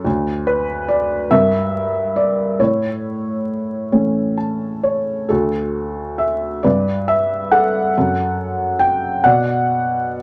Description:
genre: classical, lyrical solo piano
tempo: 44-48 BPM (dotted quarters)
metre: 6/8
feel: rubato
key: unclear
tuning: A4 = 439 Hz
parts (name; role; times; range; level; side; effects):
- felt-muted upright piano; solo; 0.0-10.2 s; D2 to A5; -18 LUFS; equal; none
room: moderate small room reverb, RT60 0.5 s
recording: vinyl crackle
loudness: -18 LUFS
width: mono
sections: 0.0-10.2 A section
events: felt piano fill 3.9-5.3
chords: 0.1 N.C.; 1.3 Gm; 2.6 A; 5.3 D; 6.6 G; 8.0 F#m; 9.2 Bm

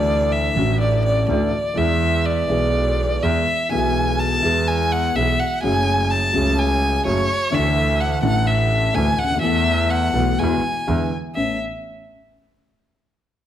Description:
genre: tango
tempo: 126 BPM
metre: 4/4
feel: rubato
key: A major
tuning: A4 = 440 Hz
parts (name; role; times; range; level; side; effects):
- warm violin; second line; 0.0-11.6 s; C#5 to A5; -21 LUFS; left 1 dB; none
- dark upright piano; accompaniment; 0.0-11.6 s; A1 to A4; -22 LUFS; left 1 dB; none
- bright double bass; bass; 0.0-11.6 s; F#1 to E2; -23 LUFS; right 2 dB; none
room: wet large studio reverb, RT60 1.4 s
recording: none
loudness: -17 LUFS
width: side -10 dB against mid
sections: 0.0-11.4 A section; 11.4-13.3 B section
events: violin solo 0.0-11.4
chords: 0.0 Dadd9; 1.8 E; 5.6 F#madd9; 7.5 Dsus2; 9.4 Esus4; 10.4 Eadd9; 10.9 E7; 11.4 Aadd9

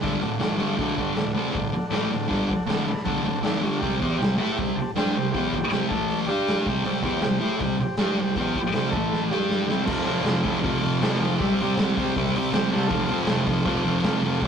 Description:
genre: garage rock duo or trio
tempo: 158 BPM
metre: 4/4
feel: straight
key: unclear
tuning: A4 = 440 Hz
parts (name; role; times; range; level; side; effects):
- combo organ; sustained chords; 0.0-14.5 s; G4 to B5; -31 LUFS; equal; none
- thick fuzz guitar; riff; 0.0-14.5 s; D2 to A4; -23 LUFS; equal; distortion
- raw garage drum kit; drums; 0.0-14.5 s; crash cymbal, hi-hat, kick drum, snare drum; -28 LUFS; equal; none
room: moderate studio reverb, RT60 0.5 s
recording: rough rehearsal-room recording, tube saturation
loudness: -21 LUFS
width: side -7 dB against mid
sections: 0.0-9.9 A section; 9.9-14.5 B section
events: transistor combo organ fill 2.7-3.8, 12.2-12.9; drum fill 9.1-9.9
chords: 0.0 D; 3.8 C5; 5.9 A5; 6.3 G5; 6.7 C5; 8.9 A5; 9.3 G5; 9.7 C5; 9.9 F; 11.4 C; 12.9 F

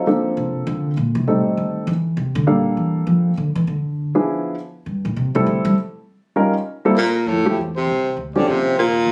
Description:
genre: jazz, small-group swing and bop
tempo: 200 BPM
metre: 4/4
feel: swing 62% on 8ths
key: unclear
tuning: A4 = 440 Hz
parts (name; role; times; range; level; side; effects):
- warm baby grand piano; accompaniment; 0.0-8.7 s; F3 to F5; -21 LUFS; equal; none
- upright bass; bass; 0.4-9.1 s; Bb1 to G3; -24 LUFS; equal; none
- clear baritone saxophone; melody; 7.0-9.1 s; A2 to D3; -21 LUFS; equal; none
- dark trumpet; second line; 7.0-9.1 s; A4 to D5; -28 LUFS; equal; none
room: light reverb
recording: recorded on a phone in the room, studio reverb, compression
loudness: -20 LUFS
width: mono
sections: 0.0-7.3 A section; 7.3-9.1 B section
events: upright bass solo 0.0-7.3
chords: 0.1 Bbmaj9; 1.3 Am7b5; 1.9 Cadd9; 2.5 Gm9; 3.7 E7b9; 4.9 Am7; 6.1 Eb9; 6.7 C7; 7.3 Fmaj9; 8.5 Eb13

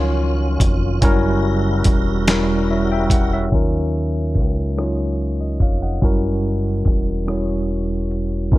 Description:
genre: slow six-eight R&B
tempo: 48 BPM (dotted quarters)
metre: 6/8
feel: straight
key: unclear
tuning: A4 = 440 Hz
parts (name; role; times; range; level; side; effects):
- tine electric piano; accompaniment; 0.0-8.6 s; F3 to G5; -21 LUFS; equal; medium stereo tremolo
- tonewheel organ; sustained chords; 0.0-3.5 s; Eb3 to Bb4; -26 LUFS; right 1 dB; chorus vibrato, slow rotary speaker
- deep dub fingered electric bass; bass; 0.0-8.6 s; Fb1 to Eb2; -21 LUFS; equal; none
- dusty soul sampler-style drum kit; drums; 0.6-8.6 s; hi-hat, kick drum, rim click, snare drum; -18 LUFS; equal; none
room: digital ambience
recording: low-pass filter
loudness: -16 LUFS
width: side -17 dB against mid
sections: 0.0-3.5 A section; 3.5-8.6 B section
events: filter sweep 3.5-8.6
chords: 0.0 Ebm9; 1.0 Gb7b9; 3.5 Ebm9; 6.0 Gb7b9

